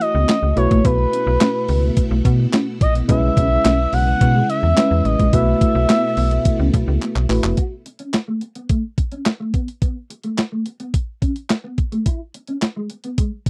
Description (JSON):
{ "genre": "early-eighties boogie funk", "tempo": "107 BPM", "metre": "4/4", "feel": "straight", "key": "F# minor", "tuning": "A4 = 440 Hz", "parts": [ { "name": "expressive portamento lead", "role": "melody", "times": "0.0-7.0 s", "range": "B4 to F#5", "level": "-22 LUFS", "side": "equal", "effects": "chorus, slapback echo" }, { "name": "tine electric piano", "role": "accompaniment", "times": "0.0-7.6 s", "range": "G#3 to C#5", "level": "-26 LUFS", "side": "equal", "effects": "none" }, { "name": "string machine, violins", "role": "sustained chords", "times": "0.0-7.6 s", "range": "B2 to F#4", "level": "-30 LUFS", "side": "equal", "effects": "ensemble chorus" }, { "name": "mellow electric guitar", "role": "riff", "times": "0.0-13.5 s", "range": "G#3 to F#4", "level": "-28 LUFS", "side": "equal", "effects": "ensemble chorus" }, { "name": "clean 12-bit digital drum machine", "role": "drums", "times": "0.0-13.5 s", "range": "handclaps, hi-hat, kick drum, snare drum", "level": "-21 LUFS", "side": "equal", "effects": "none" }, { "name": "slap-like FM bass", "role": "bass", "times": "0.1-7.5 s", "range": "E#1 to B2", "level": "-20 LUFS", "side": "equal", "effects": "none" } ], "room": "light reverb", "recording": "dry, close 1970s-style studio recording", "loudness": "-18 LUFS", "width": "mono", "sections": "0.0-7.6 A section; 7.6-13.5 B section", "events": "drum fill 7.0-7.6", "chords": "0.0 F#m7; 0.6 B7sus4; 3.1 E6/B; 5.3 B7sus4; 7.6 F#m; 9.5 Asus2; 12.1 E6" }